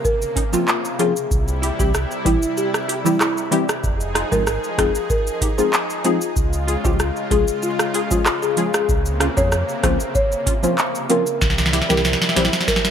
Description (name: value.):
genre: dancehall.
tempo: 95 BPM.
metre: 4/4.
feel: straight.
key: F minor.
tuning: A4 = 440 Hz.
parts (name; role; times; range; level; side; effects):
folk marimba with soft mallets; melody; 0.0-12.8 s; E4 to Db5; -22 LUFS; left 1 dB; none.
lush unison pad; sustained chords; 0.0-12.9 s; C3 to Ab4; -27 LUFS; equal; chorus, sidechain pumping.
booming analog drum machine; drums; 0.0-12.9 s; handclaps, hi-hat, kick drum, rim click, shaker, snare drum; -20 LUFS; right 1 dB; gated reverb.
punchy chord stab; accompaniment; 0.4-12.5 s; E3 to Ab4; -24 LUFS; left 1 dB; chorus, sidechain pumping.
sub bass with octave; bass; 1.3-12.5 s; F1 to F2; -24 LUFS; right 1 dB; none.
room: light reverb.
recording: bright 1980s-style digital production.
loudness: -17 LUFS.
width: side -8 dB against mid.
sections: 0.0-12.9 A section.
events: kick muted 2.6-3.8; drum fill 11.4-12.9.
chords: 0.0 Bbmadd9; 1.3 C; 3.8 Fm7; 6.4 Db; 8.9 Bbmadd9/Db; 11.4 C.